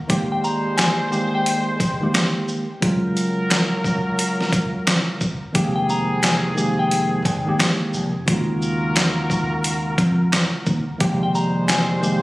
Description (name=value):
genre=hip hop, boom-bap hip-hop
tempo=88 BPM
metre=4/4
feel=swing 63% on 16ths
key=unclear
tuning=A4 = 441 Hz
part: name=mellow tine electric piano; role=accompaniment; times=0.1-12.2 s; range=Db3 to G4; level=-23 LUFS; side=right 1 dB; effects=medium stereo tremolo, cassette tape, high-pass filter, low-pass filter
part: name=clear horn section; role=stabs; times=0.1-12.2 s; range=Eb3 to C5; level=-27 LUFS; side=equal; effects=high-pass filter, low-pass filter, tape echo
part: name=dusty soul sampler-style drum kit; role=drums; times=0.1-12.2 s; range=handclaps, hi-hat, kick drum, shaker, snare drum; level=-21 LUFS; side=equal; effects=none
part: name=semi-hollow electric guitar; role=melody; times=0.3-1.6, 5.8-7.1, 11.2-12.2 s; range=G5 to Bb5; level=-26 LUFS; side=left 2 dB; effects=high-pass filter, low-pass filter, tape echo
part: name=finger snaps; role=percussion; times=0.8-11.9 s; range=none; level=barely audible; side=none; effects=none
part: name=fingered electric bass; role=bass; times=5.6-12.2 s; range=F1 to F2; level=-23 LUFS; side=equal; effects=none
room=light reverb, digital ambience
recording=recorded on a phone in the room, studio reverb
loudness=-18 LUFS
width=side -19 dB against mid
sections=0.0-12.2 A section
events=none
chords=0.1 Abmaj9/Eb; 2.8 Gbmaj9/Db; 5.6 Fm11; 8.3 Ebm11; 11.0 Fm11